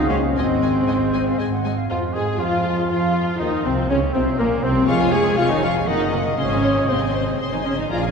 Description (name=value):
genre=quick classical-period movement for symphony orchestra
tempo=120 BPM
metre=3/4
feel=straight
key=unclear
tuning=A4 = 439 Hz
part: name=clear clarinet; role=second line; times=0.0-8.1 s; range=Ab3 to Ab5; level=-31 LUFS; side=left 2 dB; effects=none
part: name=silver concert flute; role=second line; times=0.0-8.1 s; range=Bb4 to Ab5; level=-30 LUFS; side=left 2 dB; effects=none
part: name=warm cor anglais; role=second line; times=0.0-8.1 s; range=Bb3 to Ab5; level=-30 LUFS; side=right 1 dB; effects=none
part: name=mellow bassoon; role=accompaniment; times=0.0-8.1 s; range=Bb2 to Bb3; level=-29 LUFS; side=right 2 dB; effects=none
part: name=mellow French horn section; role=sustained chords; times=0.0-8.0 s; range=Bb3 to Ab4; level=-25 LUFS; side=left 4 dB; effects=none
part: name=rich studio cello section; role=bass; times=0.0-8.1 s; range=Bb2 to Db4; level=-27 LUFS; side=right 2 dB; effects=none
part: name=rich studio double bass section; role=bass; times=0.0-8.1 s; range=F1 to Ab2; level=-25 LUFS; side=right 2 dB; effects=none
part: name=warm studio violin section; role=melody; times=0.1-8.1 s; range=Bb3 to Db6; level=-30 LUFS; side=left 5 dB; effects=none
part: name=warm studio violin section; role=second line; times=0.1-8.1 s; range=Bb3 to Ab5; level=-28 LUFS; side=left 3 dB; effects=none
part: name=rich studio viola section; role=accompaniment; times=0.1-8.0 s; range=Ab3 to Ab4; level=-25 LUFS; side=right 1 dB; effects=none
room=wet cathedral reverb, RT60 4.5 s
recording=recorded in a church or concert hall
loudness=-17 LUFS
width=side -5 dB against mid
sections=0.0-1.9 A section; 1.9-8.1 B section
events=none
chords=0.4 Ab; 1.9 Fm; 3.4 Bbmadd9; 4.9 Db/F; 5.9 Ebm/Gb; 6.4 Ab